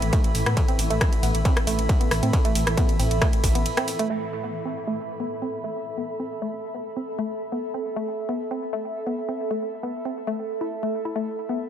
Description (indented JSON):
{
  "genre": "driving peak-time techno",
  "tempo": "136 BPM",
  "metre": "4/4",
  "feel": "straight",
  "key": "unclear",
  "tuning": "A4 = 440 Hz",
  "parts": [
    { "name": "dark detuned saw bass", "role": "bass", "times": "0.0-3.6 s", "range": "A1 to A2", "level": "-25 LUFS", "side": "equal", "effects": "sidechain pumping" },
    { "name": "swarming drone", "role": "drone", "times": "0.0-4.1 s", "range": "A2 to E3", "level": "-34 LUFS", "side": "left 1 dB", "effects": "built-in reverb, sidechain pumping" },
    { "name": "techno drum kit", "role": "drums", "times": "0.0-4.2 s", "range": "crash cymbal, hi-hat, ride cymbal, rim click", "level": "-29 LUFS", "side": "equal", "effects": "overdrive, sidechain pumping on hats, low-pass filter on hats, sidechain pumping on cymbals, low-pass filter on cymbals, low-pass filter on snare" },
    { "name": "warbly tape-like pad", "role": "texture", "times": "0.0-11.7 s", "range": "A4 to B5", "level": "-30 LUFS", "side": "right 2 dB", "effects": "chorus, built-in reverb, sidechain pumping" },
    { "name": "woody wave-folded pluck", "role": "riff", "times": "0.1-11.5 s", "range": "A3 to E4", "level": "-30 LUFS", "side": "equal", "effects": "chorus, tube saturation, sidechain pumping, dub echo" },
    { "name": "electronic kick drum", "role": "drums", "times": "0.1-3.5 s", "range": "none", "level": "-21 LUFS", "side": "equal", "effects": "distortion, overdrive" }
  ],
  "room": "light reverb, digital ambience",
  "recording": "none",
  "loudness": "-23 LUFS",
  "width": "side -9 dB against mid",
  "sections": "0.0-4.1 A section; 4.1-11.7 B section",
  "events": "drop 0.0-4.1; break 3.7-4.1; filter sweep on synth arpeggio sound 4.1-11.7",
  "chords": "0.0 A5",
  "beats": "0.13 | 0.57 1.01 1.45 1.89 | 2.33 2.77 3.22 3.66 | 4.10 4.54 4.98 5.42 | 5.86 6.30 6.75 7.19 | 7.63 8.07 8.51 8.95 | 9.39 9.83 10.28 10.72 | 11.16 11.60"
}